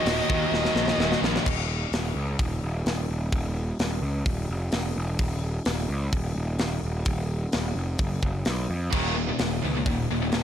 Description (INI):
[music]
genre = heavy metal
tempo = 129 BPM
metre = 4/4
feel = straight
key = Eb minor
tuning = A4 = 441 Hz
[part]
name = high-gain lead guitar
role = melody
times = 0.0-1.2 s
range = D#5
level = -29 LUFS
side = equal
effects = distortion, ping-pong delay
[part]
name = high-gain lead guitar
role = second line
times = 0.0-1.2 s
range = F#4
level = -35 LUFS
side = right 2 dB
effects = distortion
[part]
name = heavy high-gain guitar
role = riff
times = 0.0-1.5, 8.9-10.4 s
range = Eb2 to Eb3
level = -29 LUFS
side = left 15 dB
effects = distortion
[part]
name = scooped high-gain guitar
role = riff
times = 0.0-1.5 s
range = Eb2 to Eb3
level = -30 LUFS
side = left 2 dB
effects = distortion
[part]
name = tight distorted guitar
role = riff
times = 0.0-1.5, 8.9-10.4 s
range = Eb2 to Eb3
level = -31 LUFS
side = right 13 dB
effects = distortion
[part]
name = fuzz picked electric bass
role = bass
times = 0.1-10.4 s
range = Eb1 to F2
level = -28 LUFS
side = equal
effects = overdrive
[part]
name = tight metal drum kit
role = drums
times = 0.1-10.4 s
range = crash cymbal, hi-hat, kick drum, snare drum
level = -28 LUFS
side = equal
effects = none
[sound]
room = little or no reverb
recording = dark, warm production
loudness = -24 LUFS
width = side -10 dB against mid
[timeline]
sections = 0.0-1.5 A section; 1.5-10.4 B section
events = drum fill 0.5-1.5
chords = 0.0 Ebm; 1.5 N.C.; 8.9 Eb5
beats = 0.07 0.53 0.99 | 1.46 1.93 2.39 2.86 | 3.33 3.79 4.26 4.73 | 5.19 5.66 6.13 6.60 | 7.06 7.53 8.00 8.46 | 8.93 9.39 9.86 10.33